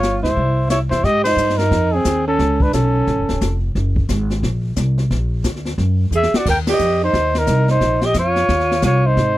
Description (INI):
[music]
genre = jazz, small-group swing and bop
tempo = 177 BPM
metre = 4/4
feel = swing 62% on 8ths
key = F minor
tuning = A4 = 442 Hz
[part]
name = breathy trumpet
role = melody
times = 0.0-3.6, 6.2-9.4 s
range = Ab4 to G5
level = -19 LUFS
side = left 2 dB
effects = none
[part]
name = growling alto saxophone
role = second line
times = 0.0-3.6, 6.1-9.4 s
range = C4 to Bb4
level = -20 LUFS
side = right 4 dB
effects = none
[part]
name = upright bass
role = bass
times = 0.0-9.4 s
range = Db1 to Ab2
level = -18 LUFS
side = equal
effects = none
[part]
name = jazz brush drum kit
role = drums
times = 0.0-9.4 s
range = brushed snare drum, crash cymbal, hi-hat, kick drum, ride cymbal, snare drum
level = -23 LUFS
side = left 1 dB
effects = none
[sound]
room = little or no reverb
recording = dry, close 1970s-style studio recording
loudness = -15 LUFS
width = side -15 dB against mid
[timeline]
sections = 0.0-1.0 A section; 1.0-9.4 B section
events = band accent 1.2, 6.6; drum fill 6.1-6.5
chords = 0.4 C; 1.0 Fm11; 2.4 Dbaug7; 3.8 Gbadd9; 5.1 Bbaug; 6.5 Eb6; 7.8 Bbm; 8.5 Ebsus2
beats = 0.03 0.37 0.71 | 1.05 1.39 1.72 2.06 | 2.40 2.74 3.08 3.41 | 3.75 4.09 4.43 4.77 | 5.10 5.44 5.78 6.12 | 6.46 6.79 7.13 7.47 | 7.81 8.15 8.49 8.83 | 9.16